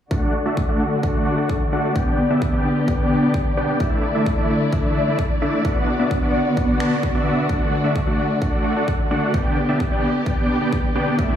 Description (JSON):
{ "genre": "EDM, festival progressive house", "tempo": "130 BPM", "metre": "4/4", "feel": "straight", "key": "D major", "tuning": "A4 = 439 Hz", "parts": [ { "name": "dark studio string section", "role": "sustained chords", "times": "0.1-11.4 s", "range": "D3 to D5", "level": "-22 LUFS", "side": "left 1 dB", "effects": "sidechain pumping, low-pass filter" }, { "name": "dense compressed supersaw", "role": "riff", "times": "0.1-11.4 s", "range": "A3 to A5", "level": "-22 LUFS", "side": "right 1 dB", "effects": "cassette tape, sidechain pumping, low-pass filter, tape echo" }, { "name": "electronic kick drum", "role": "drums", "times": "0.1-11.3 s", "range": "none", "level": "-22 LUFS", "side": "equal", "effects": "none" }, { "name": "electronic finger snaps", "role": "drums", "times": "6.8-6.9 s", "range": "none", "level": "-32 LUFS", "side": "equal", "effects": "none" } ], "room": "moderate lush hall reverb, RT60 2.0 s", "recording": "dreamy mix soaked in reverb, studio reverb", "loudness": "-18 LUFS", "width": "side -10 dB against mid", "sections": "0.1-11.4 A section", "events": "filter sweep on string section 0.1-11.4", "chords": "0.1 D; 2.0 G; 3.8 Asus4; 5.6 Bm; 7.5 D; 9.3 G" }